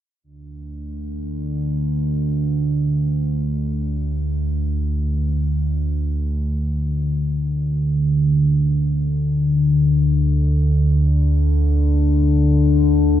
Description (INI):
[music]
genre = ambient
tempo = free time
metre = none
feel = none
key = unclear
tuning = A4 = 440 Hz
[part]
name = analog drone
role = drone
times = 0.5-13.2 s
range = D2 to D3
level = -17 LUFS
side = equal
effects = chorus
[sound]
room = light reverb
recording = none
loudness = -17 LUFS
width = side -11 dB against mid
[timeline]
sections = 0.2-13.2 A section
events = none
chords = none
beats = free time